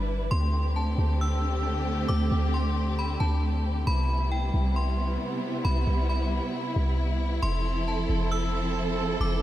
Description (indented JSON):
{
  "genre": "hip hop, atmospheric cloud-rap",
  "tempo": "135 BPM",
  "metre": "4/4",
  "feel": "half-time",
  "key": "unclear",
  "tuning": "A4 = 440 Hz",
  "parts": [
    { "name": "metallic FM bell", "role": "melody", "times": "0.0-9.4 s", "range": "G5 to E6", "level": "-34 LUFS", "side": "equal", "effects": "chorus, analog delay" },
    { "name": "warm symphonic string section", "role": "sustained chords", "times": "0.0-9.4 s", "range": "C3 to B4", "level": "-30 LUFS", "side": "equal", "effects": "none" },
    { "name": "warm 808-style bass", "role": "bass", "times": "0.0-9.4 s", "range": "F1 to D2", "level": "-26 LUFS", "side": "equal", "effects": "none" }
  ],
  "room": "light reverb",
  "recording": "none",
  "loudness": "-24 LUFS",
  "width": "side -13 dB against mid",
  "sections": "0.0-9.4 A section",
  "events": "none",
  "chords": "0.3 D7sus4; 3.9 Cmaj7; 7.4 Fmaj7"
}